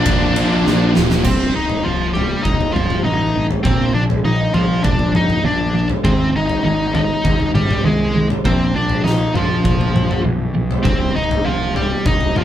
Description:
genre	quiet-loud alternative rock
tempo	100 BPM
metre	4/4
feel	straight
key	C minor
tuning	A4 = 441 Hz
part	smooth overdriven lead guitar	melody	0.0-12.4 s	F3 to Eb5	-19 LUFS	left 1 dB	none
part	fuzz guitar	riff	0.0-1.2 s	Bb2 to Bb3	-19 LUFS	equal	distortion
part	high-gain distorted guitar	riff	0.0-1.2 s	Bb2 to Bb4	-24 LUFS	equal	distortion
part	fuzz picked electric bass	bass	0.0-12.4 s	C1 to C2	-21 LUFS	equal	overdrive
part	oversized low-tuned drum kit	drums	0.1-12.4 s	crash cymbal, kick drum, ride cymbal, snare drum, toms	-20 LUFS	equal	none
part	twelve-string electric guitar	arpeggios	1.3-12.4 s	C2 to Bb3	-22 LUFS	right 1 dB	none
room	moderate studio reverb, RT60 0.6 s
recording	band playing live in one room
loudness	-14 LUFS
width	side -11 dB against mid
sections	0.0-1.2 A section; 1.2-12.4 B section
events	drum fill 0.7-1.2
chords	0.0 Bb; 1.2 Cm; 3.6 Bb; 6.0 Ab; 8.4 Bb; 10.9 Cm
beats	0.06 0.65 | 1.25 1.85 2.45 3.04 | 3.64 4.24 4.84 5.44 | 6.04 6.64 7.25 7.85 | 8.45 9.05 9.65 10.25 | 10.85 11.46 12.06

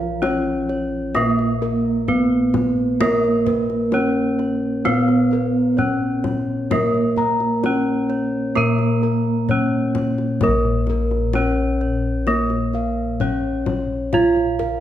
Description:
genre	Javanese gamelan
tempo	65 BPM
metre	4/4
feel	straight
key	unclear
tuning	A4 = 440 Hz
part	gamelan-type bronze metallophone	melody	0.0-14.8 s	Bb3 to Bb4	-21 LUFS	equal	none
part	gamelan-type bronze metallophone	accompaniment	0.0-10.4 s	F3-30c to Cb4+20c	-23 LUFS	right 3 dB	none
part	gamelan-type bossed gongs	arpeggios	0.0-14.8 s	Bb4 to Bb5	-30 LUFS	left 6 dB	none
part	gamelan-type bronze metallophone	arpeggios	0.0-14.8 s	Bb4 to Bb5	-30 LUFS	right 4 dB	none
part	gamelan-type bossed gongs	bass	0.0-14.8 s	Bb1 to Bb4	-23 LUFS	left 1 dB	none
part	kendang	percussion	0.2-14.8 s	none	-28 LUFS	left 5 dB	none
room	moderate recital hall reverb, RT60 1.4 s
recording	none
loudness	-17 LUFS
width	side -11 dB against mid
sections	0.0-10.4 A section; 10.4-14.8 A section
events	none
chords	none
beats	0.23 1.16 2.09 | 3.01 3.94 4.87 5.79 | 6.72 7.64 8.57 9.50 | 10.42 11.35 12.27 13.20 | 14.13

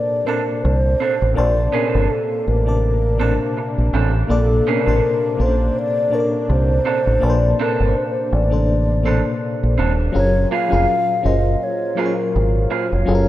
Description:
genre	R&B, neo-soul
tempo	82 BPM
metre	4/4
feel	swing 56% on 16ths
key	Bb major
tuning	A4 = 440 Hz
part	breathy mellow alto flute	melody	0.0-13.3 s	A4 to F5	-21 LUFS	left 1 dB	none
part	FM electric piano with tremolo	accompaniment	0.0-13.3 s	Bb2 to A5	-23 LUFS	left 3 dB	none
part	warm analog pad	sustained chords	0.0-13.3 s	Bb2 to F4	-28 LUFS	right 1 dB	wide subtle chorus
part	electric guitar through a small old amp	second line	0.3-12.8 s	Bb3 to A4	-26 LUFS	right 7 dB	spring reverb
part	deep dub fingered electric bass	bass	0.6-13.3 s	Eb1 to C2	-17 LUFS	equal	none
room	moderate lush hall reverb, RT60 2.6 s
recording	rough home demo mix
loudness	-16 LUFS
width	side -14 dB against mid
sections	0.0-13.3 A section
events	none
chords	0.0 Bbmaj9; 10.1 Gbmaj9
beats	0.62 | 1.36 2.09 2.82 3.55 | 4.28 5.01 5.75 6.48 | 7.21 7.94 8.67 9.41 | 10.14 10.87 11.60 12.33 | 13.06

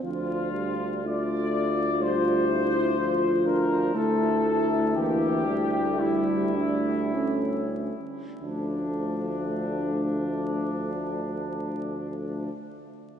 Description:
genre	classical, hymn-like piece for brass band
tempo	46-64 BPM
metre	4/4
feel	rubato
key	D minor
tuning	A4 = 439 Hz
part	dark trumpet section	melody	0.0-12.5 s	D4 to D5	-30 LUFS	left 5 dB	none
part	mellow euphonium	accompaniment	0.0-12.5 s	A3 to F4	-30 LUFS	left 1 dB	none
part	mellow trombone	accompaniment	0.0-12.5 s	E3 to A3	-33 LUFS	right 2 dB	none
part	clear tuba	bass	0.0-12.5 s	D2	-30 LUFS	equal	none
part	dark French horn section	second line	2.0-12.5 s	G3 to F4	-32 LUFS	right 4 dB	none
room	wet cathedral reverb, RT60 5.4 s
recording	vinyl crackle, nothing above 10.9 kHz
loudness	-24 LUFS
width	side -8 dB against mid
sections	0.0-8.4 A section; 8.4-13.2 B section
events	slowing down 0.0-8.4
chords	0.0 Dm; 3.9 A7/D; 8.4 Dm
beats	| 0.02 1.05 2.01 2.96 | 3.94 4.94 5.98 7.14 | 8.42 9.67 10.93 12.17

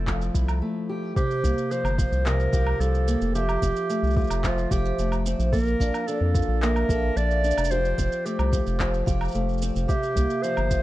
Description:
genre	folktronica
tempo	110 BPM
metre	4/4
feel	straight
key	C mixolydian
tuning	A4 = 440 Hz
part	warm clarinet	melody	0.0-10.8 s	F4 to D5	-28 LUFS	right 1 dB	none
part	fingerpicked acoustic archtop guitar	arpeggios	0.0-10.8 s	C3 to A4	-29 LUFS	equal	none
part	round analog bass	bass	0.0-10.8 s	F1 to F2	-25 LUFS	equal	none
part	electronic handclaps, shaker and woodblock	drums	0.1-10.8 s	none	-34 LUFS	right 2 dB	none
part	electronic kick drum	drums	0.1-10.8 s	none	-26 LUFS	equal	none
part	vibraphone with medium mallets	second line	1.2-10.8 s	C5 to F5	-32 LUFS	right 2 dB	digital delay
room	light reverb, small room ambience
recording	dark, warm production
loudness	-22 LUFS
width	side -16 dB against mid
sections	0.0-1.2 A section; 1.2-10.8 B section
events	break 0.6-1.2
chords	0.0 Fmaj9; 1.2 C7sus4; 3.3 Fadd9; 5.5 Bbmaj7; 7.7 Fadd9; 9.9 C7sus4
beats	0.07 0.62 | 1.17 1.71 2.26 2.80 | 3.35 3.89 4.44 4.98 | 5.53 6.07 6.62 7.17 | 7.71 8.26 8.80 9.35 | 9.89 10.44

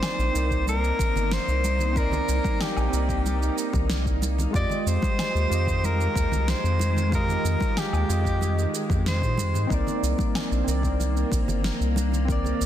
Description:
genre	sunset chillout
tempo	93 BPM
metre	4/4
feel	straight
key	C minor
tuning	A4 = 440 Hz
part	warm soprano saxophone	melody	0.0-9.7 s	G4 to D5	-29 LUFS	left 1 dB	tape echo
part	soft electric-piano-like synth keys	accompaniment	0.0-12.7 s	Eb3 to Eb5	-31 LUFS	right 2 dB	chorus, auto-pan, ping-pong delay
part	soft string machine	sustained chords	0.0-12.7 s	Eb3 to G4	-33 LUFS	equal	ensemble chorus
part	Celtic harp	arpeggios	0.0-1.9, 9.7-12.7 s	Bb3 to F4	-34 LUFS	left 5 dB	ping-pong delay
part	electronic snare drum, woodblock and shaker	drums	0.0-12.7 s	none	-32 LUFS	right 1 dB	none
part	round analog bass	bass	0.2-12.7 s	G1 to Bb2	-25 LUFS	equal	none
part	electronic kick drum	drums	0.5-12.4 s	none	-28 LUFS	equal	none
part	congas	percussion	0.7-12.6 s	none	-35 LUFS	right 2 dB	none
room	light reverb, digital ambience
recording	dense, heavily limited modern master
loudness	-22 LUFS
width	side -11 dB against mid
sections	0.0-12.7 A section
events	none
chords	0.0 Cm9; 4.5 Fm9; 9.7 Cm9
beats	0.03 0.67 1.32 | 1.96 2.61 3.25 3.90 | 4.54 5.19 5.83 6.48 | 7.12 7.77 8.41 9.06 | 9.71 10.35 10.99 11.64 | 12.29

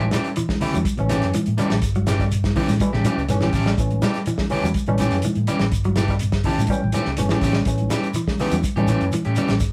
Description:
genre	afrobeat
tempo	123 BPM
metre	4/4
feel	straight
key	A mixolydian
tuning	A4 = 442 Hz
part	barky tine electric piano	accompaniment	0.0-9.1 s	E3 to A5	-30 LUFS	equal	overdrive
part	electric guitar at the edge of break-up	stabs	0.0-9.5 s	E3 to G4	-28 LUFS	equal	none
part	fingered electric bass	bass	0.0-9.7 s	G1 to A2	-25 LUFS	equal	none
part	warm soul drum kit	drums	0.0-9.7 s	hi-hat, kick drum, snare drum	-28 LUFS	equal	none
part	congas	percussion	0.0-9.5 s	none	-29 LUFS	equal	none
part	clean electric guitar	arpeggios	0.1-9.6 s	E3 to G3	-29 LUFS	equal	none
part	shekere	percussion	0.1-9.7 s	none	-32 LUFS	equal	none
room	moderate studio ambience, RT60 0.5 s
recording	band playing live in one room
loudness	-21 LUFS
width	mono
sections	0.0-9.7 A section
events	tine electric piano fill 6.2-7.7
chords	0.0 A7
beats	0.37 0.86 1.35 | 1.83 2.32 2.81 3.29 | 3.78 4.27 4.75 5.24 | 5.73 6.21 6.70 7.19 | 7.67 8.16 8.65 9.13 | 9.62

